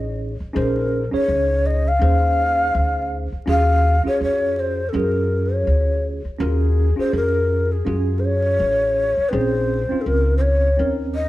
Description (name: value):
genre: hip hop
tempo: 82 BPM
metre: 4/4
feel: swing 58% on 16ths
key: Bb minor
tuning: A4 = 440 Hz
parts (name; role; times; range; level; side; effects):
- breathy mellow long shakuhachi; melody; 0.0-11.3 s; Ab4 to F5; -21 LUFS; left 2 dB; none
- mellow tine electric piano; accompaniment; 0.0-11.3 s; C4 to Db5; -24 LUFS; right 2 dB; medium stereo tremolo
- upright bass; bass; 0.0-11.3 s; A1 to Gb2; -21 LUFS; equal; none
room: moderate stone room reverb, RT60 1.3 s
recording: band playing live in one room, vinyl crackle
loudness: -17 LUFS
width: side -16 dB against mid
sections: 0.0-11.3 A section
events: none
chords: 0.0 Bbm11; 3.5 Ebm11; 9.3 Bbm11